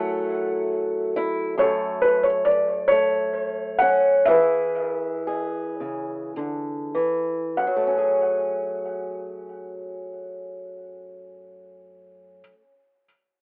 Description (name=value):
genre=folk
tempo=31-47 BPM (dotted quarters)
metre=6/8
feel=straight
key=F# minor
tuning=A4 = 439 Hz
part: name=felt-muted upright piano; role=melody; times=0.0-12.4 s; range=A4 to F#5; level=-24 LUFS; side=equal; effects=tape echo
part: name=fingerpicked acoustic archtop guitar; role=accompaniment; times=0.0-12.8 s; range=F#2 to A4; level=-27 LUFS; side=equal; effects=none
room=light reverb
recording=worn, warbling old tape, cassette tape, warbly pitch drift, telephone sound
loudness=-23 LUFS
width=mono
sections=0.0-1.6 A section; 1.6-7.6 B section; 7.6-11.4 C section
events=slowing down 1.6-7.6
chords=0.0 F#m7; 1.6 F#m; 4.3 C#m7/E; 7.6 F#madd9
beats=0.31 | 1.59 2.90 | 4.28 5.80 | 7.56 9.49